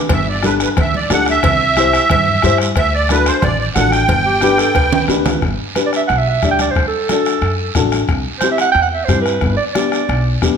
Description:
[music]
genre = latin, cumbia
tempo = 180 BPM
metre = 4/4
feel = straight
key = G major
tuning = A4 = 440 Hz
[part]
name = breathy clarinet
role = second line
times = 0.0, 4.3-10.4 s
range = G4 to G5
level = -18 LUFS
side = right 5 dB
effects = none
[part]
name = upright bass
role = bass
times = 0.0-10.6 s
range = G1 to G2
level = -20 LUFS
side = equal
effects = none
[part]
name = musette accordion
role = melody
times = 0.1-5.0 s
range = B4 to G5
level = -15 LUFS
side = right 3 dB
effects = none
[part]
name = bombo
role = percussion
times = 0.1-10.6 s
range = none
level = -21 LUFS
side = left 3 dB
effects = none
[part]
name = congas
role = percussion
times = 0.1-10.6 s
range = none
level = -25 LUFS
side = right 4 dB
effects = none
[part]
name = cowbell and timbales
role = percussion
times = 0.1-5.3 s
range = none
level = -24 LUFS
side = right 6 dB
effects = none
[part]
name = guiro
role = percussion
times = 0.1-10.6 s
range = none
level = -26 LUFS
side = right 7 dB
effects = none
[part]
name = dark upright piano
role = accompaniment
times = 0.4-10.6 s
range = B3 to D5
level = -20 LUFS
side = left 7 dB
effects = none
[sound]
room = moderate large studio reverb, RT60 1.4 s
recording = none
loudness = -12 LUFS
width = side -7 dB against mid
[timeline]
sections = 0.0-5.4 A section; 5.4-10.6 B section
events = drum fill 4.4-5.4; clarinet solo 5.4-10.6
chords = 0.0 G5; 1.4 C; 2.8 D; 4.1 G; 6.8 D; 8.1 C; 9.4 G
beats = | 0.10 0.44 0.77 1.10 | 1.43 1.77 2.10 2.43 | 2.76 3.10 3.43 3.76 | 4.09 4.42 4.76 5.09 | 5.42 5.76 6.09 6.42 | 6.75 7.09 7.42 7.75 | 8.09 8.42 8.76 9.09 | 9.42 9.75 10.09 10.42

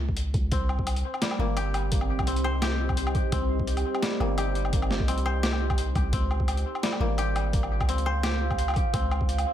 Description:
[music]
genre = half-time drum and bass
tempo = 171 BPM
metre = 4/4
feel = swing 54% on 16ths, half-time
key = C phrygian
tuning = A4 = 441 Hz
[part]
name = long sustained 808-style bass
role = bass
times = 0.0-9.5 s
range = G1 to Db2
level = -28 LUFS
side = equal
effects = none
[part]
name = electronic kick drum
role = drums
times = 0.1-9.3 s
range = none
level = -28 LUFS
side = equal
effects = overdrive
[part]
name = boom bap sampler-style drum kit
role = drums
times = 0.2-9.4 s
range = hi-hat, snare drum, woodblock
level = -32 LUFS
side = equal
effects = overdrive
[part]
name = deep dark ambient pad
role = sustained chords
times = 1.6-9.5 s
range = C4 to F5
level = -33 LUFS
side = right 2 dB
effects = chorus, built-in reverb, vintage 12-bit sampler grit, sidechain pumping
[part]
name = koto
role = arpeggios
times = 0.5-9.5 s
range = G3 to C5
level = -32 LUFS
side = left 3 dB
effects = dub echo
[sound]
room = light reverb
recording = echo-heavy mix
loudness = -24 LUFS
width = side -11 dB against mid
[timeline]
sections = 0.0-9.5 A section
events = none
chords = 0.0 Db5; 0.5 Cm; 6.1 Db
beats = 0.17 | 0.52 0.87 1.22 1.57 | 1.92 2.27 2.62 2.97 | 3.33 3.67 4.03 4.38 | 4.73 5.08 5.43 5.78 | 6.13 6.48 6.83 7.18 | 7.54 7.89 8.24 8.59 | 8.94 9.29

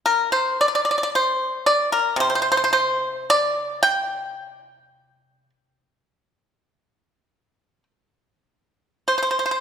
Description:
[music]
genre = chinese traditional, Chinese solo plucked strings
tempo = 48-56 BPM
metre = 4/4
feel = rubato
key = G yu mode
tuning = A4 = 440 Hz
[part]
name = pipa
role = solo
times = 0.1-9.6 s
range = C3 to G5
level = -18 LUFS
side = equal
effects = none
[sound]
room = wet recital hall reverb, RT60 1.7 s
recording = recorded in a church or concert hall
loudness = -18 LUFS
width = side -7 dB against mid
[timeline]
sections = 0.0-9.1 A section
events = none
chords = none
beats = | 0.04 1.11 2.19 3.28 | 4.38 5.51 6.67 7.87 | 9.07

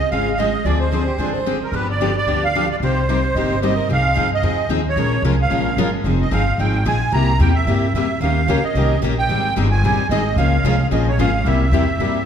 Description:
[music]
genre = acoustic string swing (jazz manouche)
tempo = 222 BPM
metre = 4/4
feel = swing 55% on 8ths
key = C minor, F minor from 3.9 s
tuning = A4 = 441 Hz
[part]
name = musette accordion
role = melody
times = 0.0-12.2 s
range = Bb4 to Bb5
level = -21 LUFS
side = right 3 dB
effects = none
[part]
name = picked steel-string acoustic guitar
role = accompaniment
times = 0.1-12.2 s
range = C3 to Bb4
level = -22 LUFS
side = left 5 dB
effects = none
[part]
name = picked steel-string acoustic guitar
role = accompaniment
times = 0.1-12.2 s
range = C3 to Bb4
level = -26 LUFS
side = right 5 dB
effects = none
[part]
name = upright bass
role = bass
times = 0.1-12.2 s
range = F1 to G2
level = -19 LUFS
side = equal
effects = none
[part]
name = growling soprano saxophone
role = second line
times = 1.1-3.9 s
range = G4 to Eb5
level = -28 LUFS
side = right 4 dB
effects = none
[sound]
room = wet scoring stage reverb, RT60 1.9 s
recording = recorded in a church or concert hall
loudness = -16 LUFS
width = side -8 dB against mid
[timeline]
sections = 0.0-3.9 A section; 3.9-12.3 B section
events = none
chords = 0.0 Dbmaj7; 0.6 Dm7b5; 1.7 G7; 2.8 Cm7; 3.9 Fm7; 5.0 Bbm7; 6.0 Fm7; 7.1 C7; 8.2 Eb7; 9.3 Abmaj7; 10.4 Db6; 11.5 C7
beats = 0.11 0.38 | 0.65 0.92 1.19 1.46 | 1.73 2.00 2.27 2.54 | 2.81 3.08 3.35 3.62 | 3.89 4.16 4.43 4.70 | 4.97 5.24 5.51 5.78 | 6.05 6.32 6.59 6.86 | 7.13 7.40 7.67 7.94 | 8.21 8.48 8.75 9.02 | 9.29 9.56 9.83 10.10 | 10.37 10.64 10.91 11.18 | 11.45 11.72 11.99

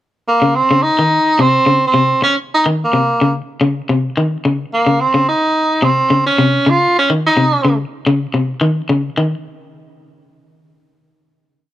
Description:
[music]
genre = afrobeat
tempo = 108 BPM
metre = 4/4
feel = swing 53% on 16ths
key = unclear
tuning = A4 = 441 Hz
[part]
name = bright tenor saxophone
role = melody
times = 0.3-7.8 s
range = Bb3 to F4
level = -13 LUFS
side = right 1 dB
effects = none
[part]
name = electric guitar at the edge of break-up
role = arpeggios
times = 0.4-9.3 s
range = C3 to Eb3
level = -15 LUFS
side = left 2 dB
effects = none
[sound]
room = studio reverb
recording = dry, close 1970s-style studio recording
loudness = -12 LUFS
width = side -13 dB against mid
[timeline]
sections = 0.3-9.2 groove; 9.2-11.4 final note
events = none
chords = 0.3 Bbmadd11/Db; 1.4 N.C.; 2.5 Cm; 4.7 N.C.; 5.8 Dbmaj7/C; 6.9 Cm; 9.2 N.C.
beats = | 0.27 0.83 1.39 1.94 | 2.50 3.06 3.61 4.17 | 4.72 5.28 5.83 6.39 | 6.94 7.50 8.05 8.61 | 9.16

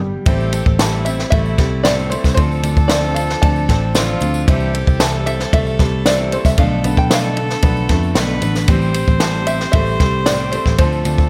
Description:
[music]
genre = indie folk with a building arrangement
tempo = 114 BPM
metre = 4/4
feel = straight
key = A minor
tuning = A4 = 439 Hz
[part]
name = warm upright piano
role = arpeggios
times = 0.0-11.3 s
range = D3 to G4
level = -27 LUFS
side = equal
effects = none
[part]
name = picked electric bass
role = bass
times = 0.0-11.3 s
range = G1 to F2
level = -21 LUFS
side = equal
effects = none
[part]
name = warm fiddle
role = second line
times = 0.3-11.3 s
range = E4 to C5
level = -28 LUFS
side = equal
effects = slapback echo
[part]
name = picked steel-string acoustic guitar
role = accompaniment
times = 0.3-11.3 s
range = A2 to A4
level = -27 LUFS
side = equal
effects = none
[part]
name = compact cocktail drum kit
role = drums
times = 0.3-11.3 s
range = kick drum, ride cymbal, snare drum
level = -19 LUFS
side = equal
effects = none
[part]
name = tambourine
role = percussion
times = 0.3-11.3 s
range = none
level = -38 LUFS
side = equal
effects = none
[part]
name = open-back banjo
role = melody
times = 0.8-11.3 s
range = C5 to A5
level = -24 LUFS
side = equal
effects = none
[sound]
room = light reverb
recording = none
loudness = -16 LUFS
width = mono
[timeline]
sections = 0.3-11.3 A section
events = none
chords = 0.3 Am7; 2.4 Dm7; 4.5 Am7/C; 6.6 Bm7b5; 8.7 Am7; 10.8 Dm7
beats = | 0.27 0.80 1.32 1.85 | 2.38 2.90 3.43 3.95 | 4.48 5.01 5.53 6.06 | 6.58 7.11 7.63 8.16 | 8.69 9.21 9.74 10.27 | 10.79

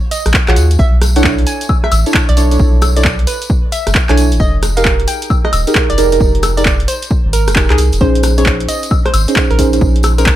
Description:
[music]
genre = UK garage, two-step garage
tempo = 133 BPM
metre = 4/4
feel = swing 64% on 16ths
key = unclear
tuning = A4 = 440 Hz
[part]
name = hollow square pluck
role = melody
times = 0.1-10.3 s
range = Ab4 to Ab5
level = -22 LUFS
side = right 1 dB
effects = chorus
[part]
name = punchy analog drum machine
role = drums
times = 0.1-10.4 s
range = handclaps, hi-hat, rim click, woodblock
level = -17 LUFS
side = equal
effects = none
[part]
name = tambourine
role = percussion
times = 0.1-10.4 s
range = none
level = -26 LUFS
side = left 4 dB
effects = none
[part]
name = soft dub sub bass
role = bass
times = 0.3-10.4 s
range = Eb1 to Eb2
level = -13 LUFS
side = equal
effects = sidechain pumping
[part]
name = electronic kick drum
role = drums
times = 0.3-10.4 s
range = none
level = -15 LUFS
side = equal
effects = none
[part]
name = deep mellow chord stab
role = stabs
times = 0.5-10.3 s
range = Db4 to Db5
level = -17 LUFS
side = right 2 dB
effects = wide subtle chorus, dub echo
[sound]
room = little or no reverb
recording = none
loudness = -10 LUFS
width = side -13 dB against mid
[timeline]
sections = 0.0-8.0 A section; 8.0-10.4 A section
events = drop 0.0-8.0, 8.0-10.4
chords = 0.0 Ebm11; 0.8 Bm11; 4.4 Fm11; 8.0 Bbm11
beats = 0.34 | 0.79 1.24 1.69 2.14 | 2.60 3.05 3.50 3.95 | 4.40 4.85 5.30 5.75 | 6.20 6.66 7.11 7.56 | 8.01 8.46 8.91 9.36 | 9.81 10.26

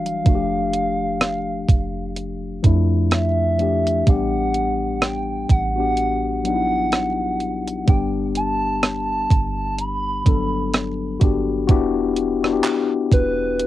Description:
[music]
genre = contemporary R&B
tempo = 63 BPM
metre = 4/4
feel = swing 58% on 16ths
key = unclear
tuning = A4 = 442 Hz
[part]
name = gliding portamento lead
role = melody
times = 0.0-13.7 s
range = B4 to B5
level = -23 LUFS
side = right 2 dB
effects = chorus, tremolo, cassette tape
[part]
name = mellow tine electric piano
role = accompaniment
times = 0.0-13.7 s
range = E3 to A4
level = -23 LUFS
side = left 6 dB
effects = medium stereo tremolo, cassette tape
[part]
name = warm 808-style bass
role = bass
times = 0.0-13.7 s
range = E1 to F2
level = -26 LUFS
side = right 2 dB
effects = none
[part]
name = gated 80s digital drum machine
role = drums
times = 0.1-13.7 s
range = handclaps, hi-hat, kick drum, rim click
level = -17 LUFS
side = right 2 dB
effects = gated reverb, cassette tape
[sound]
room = moderate booth ambience, RT60 0.2 s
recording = home recording on cassette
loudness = -18 LUFS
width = side -14 dB against mid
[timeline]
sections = 0.0-11.7 A section; 11.7-13.7 B section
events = none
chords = 0.3 F69; 4.1 A13sus4; 7.9 Gmaj7; 11.7 Em9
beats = | 0.26 1.22 2.17 3.12 | 4.07 5.02 5.98 6.93 | 7.88 8.83 9.79 10.74 | 11.69 12.64 13.60

